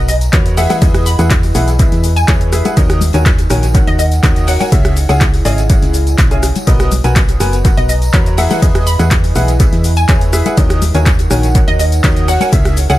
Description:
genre	piano house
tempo	123 BPM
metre	4/4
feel	straight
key	unclear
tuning	A4 = 440 Hz
part	hollow square pluck	melody	0.0-13.0 s	D#5 to B5	-22 LUFS	equal	ensemble chorus, dub echo
part	bright upright piano	riff	0.0-13.0 s	C#3 to G#5	-18 LUFS	left 1 dB	sidechain pumping, dub echo
part	solid FM bass	bass	0.0-13.0 s	F#1 to E2	-14 LUFS	equal	sidechain pumping
part	warbly tape-like pad	texture	0.0-13.0 s	D#4 to A#5	-25 LUFS	equal	chorus, built-in reverb, sidechain pumping
part	punchy analog drum machine	drums	0.1-13.0 s	cabasa, handclaps, hi-hat, rim click	-20 LUFS	equal	dub echo
part	warm soul drum kit	drums	0.1-12.9 s	hi-hat, shaker, snare drum	-32 LUFS	left 4 dB	none
part	tambourine and congas	percussion	0.2-13.0 s	none	-26 LUFS	left 6 dB	none
part	electronic kick drum	drums	0.3-12.6 s	none	-13 LUFS	equal	none
room	studio reverb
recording	echo-heavy mix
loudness	-9 LUFS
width	side -15 dB against mid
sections	0.0-13.0 A section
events	none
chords	0.0 Bmaj7; 0.6 Emaj7; 2.8 D#m7; 4.7 C#m; 6.7 Bmaj7; 8.4 Emaj7; 10.6 D#m7

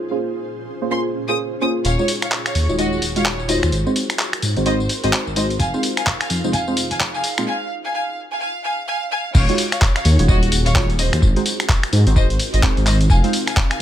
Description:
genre	UK garage, two-step garage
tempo	128 BPM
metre	4/4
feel	swing 60% on 16ths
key	unclear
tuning	A4 = 440 Hz
part	ethereal airy pad	sustained chords	0.0-13.8 s	Bb2 to Db5	-31 LUFS	right 1 dB	ensemble chorus, built-in reverb, tremolo, sidechain pumping
part	deep mellow chord stab	stabs	0.1-13.3 s	Ab3 to Db5	-23 LUFS	right 1 dB	chorus, dub echo
part	warm symphonic violin section	melody	0.9-13.8 s	Gb4 to Eb6	-24 LUFS	equal	none
part	dark detuned saw bass	bass	1.8-13.2 s	Eb1 to Bb2	-19 LUFS	equal	sidechain pumping
part	boom bap sampler-style drum kit	drums	1.8-13.8 s	crash cymbal, finger snaps, handclaps, hi-hat, tambourine	-22 LUFS	left 1 dB	high-pass filter on hats, high-pass filter on perc, high-pass filter on snare, high-pass filter on cymbals, high-pass filter on room
part	electronic kick drum	drums	5.6-13.7 s	none	-16 LUFS	equal	none
room	moderate small room reverb, RT60 0.5 s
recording	high-pass filter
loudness	-16 LUFS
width	side -11 dB against mid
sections	0.0-1.8 A section; 1.8-9.3 B section; 9.3-13.8 C section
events	filter sweep on synth stab 0.0-1.8; build-up 1.8-9.3; break 7.5-9.3; drop 9.3-13.8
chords	0.0 Bbm9; 1.8 Ebm11; 3.7 Ab7; 5.6 Fm7; 7.2 Bbm9 (rootless); 9.3 Ebm11; 11.2 Ab7; 13.1 Fm7

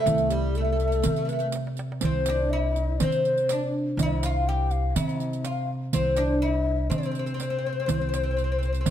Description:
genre	Arabic maqam ensemble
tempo	123 BPM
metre	4/4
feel	straight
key	C maqam rast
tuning	A4 = 441 Hz
part	oud	melody	0.0-8.9 s	G3 to G4	-28 LUFS	equal	none
part	breathy mellow low ney	second line	0.0-8.9 s	G4 to G5	-32 LUFS	left 8 dB	none
part	upright bass	bass	0.0-8.9 s	C2 to C3	-27 LUFS	equal	none
part	darbuka	percussion	0.1-8.9 s	none	-30 LUFS	right 3 dB	none
part	riq	percussion	0.1-8.9 s	none	-35 LUFS	right 9 dB	none
room	little or no reverb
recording	close, detailed microphones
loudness	-23 LUFS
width	side -10 dB against mid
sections	0.0-8.9 A section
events	drum fill 1.5-2.0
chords	none

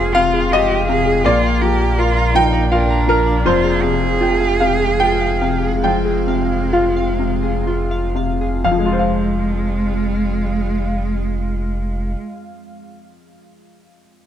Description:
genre	neoclassical piano and strings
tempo	60-83 BPM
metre	3/4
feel	rubato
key	F minor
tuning	A4 = 440 Hz
part	rich cello	second line	0.0-12.2 s	Ab3 to Ab4	-22 LUFS	right 4 dB	none
part	clear upright piano	accompaniment	0.0-14.3 s	F2 to G5	-18 LUFS	left 2 dB	none
part	evolving wavetable pad	sustained chords	0.0-12.1 s	Ab3 to G5	-28 LUFS	equal	chorus, built-in reverb
part	harp-like synth pluck	arpeggios	0.0-8.6 s	F4 to Bb5	-22 LUFS	left 1 dB	chorus, tape echo
part	saturated sub bass	bass	0.0-12.2 s	F1 to Bb1	-21 LUFS	equal	none
room	little or no reverb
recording	none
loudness	-15 LUFS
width	side -10 dB against mid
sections	0.0-8.6 A section; 8.6-11.6 B section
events	slowing down 2.4-8.6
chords	0.0 Fmadd9; 1.3 Bb; 3.5 Fmadd9; 8.6 Fm

